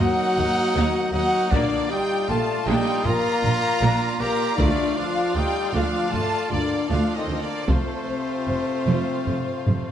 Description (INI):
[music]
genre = cinematic, epic orchestral film score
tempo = 78 BPM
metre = 4/4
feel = straight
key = unclear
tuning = A4 = 441 Hz
[part]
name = warm symphonic violin section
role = melody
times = 0.0-9.9 s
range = C5 to Bb5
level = -30 LUFS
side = left 2 dB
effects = none
[part]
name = rich symphonic violin section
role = second line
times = 0.0-9.9 s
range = C5 to Bb5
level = -34 LUFS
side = equal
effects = none
[part]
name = silver concert flute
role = second line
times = 0.0-9.9 s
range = C5 to Bb5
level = -32 LUFS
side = left 1 dB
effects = none
[part]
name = warm symphonic viola section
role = accompaniment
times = 0.0-9.7 s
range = C3 to F4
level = -31 LUFS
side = right 2 dB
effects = none
[part]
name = clear symphonic string section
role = sustained chords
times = 0.0-9.9 s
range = Gb3 to F5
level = -32 LUFS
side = equal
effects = none
[part]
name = dark French horn section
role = sustained chords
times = 0.0-9.9 s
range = C4 to Bb4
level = -27 LUFS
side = left 5 dB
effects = none
[part]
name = dark trombone section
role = sustained chords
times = 0.0-9.9 s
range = C3 to Bb3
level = -32 LUFS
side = right 2 dB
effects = none
[part]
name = clear trumpet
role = stabs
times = 0.0-9.9 s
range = A3 to G4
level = -30 LUFS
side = right 1 dB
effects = none
[part]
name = warm chamber double bass section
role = bass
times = 0.0-9.8 s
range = F1 to Eb2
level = -28 LUFS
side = right 3 dB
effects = none
[part]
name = warm symphonic cello section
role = bass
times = 0.0-9.8 s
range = D2 to Bb2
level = -30 LUFS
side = right 3 dB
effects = none
[part]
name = taiko ensemble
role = drums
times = 0.0-9.9 s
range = none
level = -26 LUFS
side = equal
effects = none
[part]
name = timpani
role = percussion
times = 4.6-5.7 s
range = D3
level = -33 LUFS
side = left 1 dB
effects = none
[part]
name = reverse cymbal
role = sound effects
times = 9.8-9.9 s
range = none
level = -58 LUFS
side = left 2 dB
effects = none
[sound]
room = moderate scoring stage reverb, RT60 1.6 s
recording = nothing above 11.0 kHz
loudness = -20 LUFS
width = side -10 dB against mid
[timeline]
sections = 0.0-9.9 A section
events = drum fill 9.7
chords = 0.0 Ebm; 1.5 Bb; 4.6 Dm; 7.7 F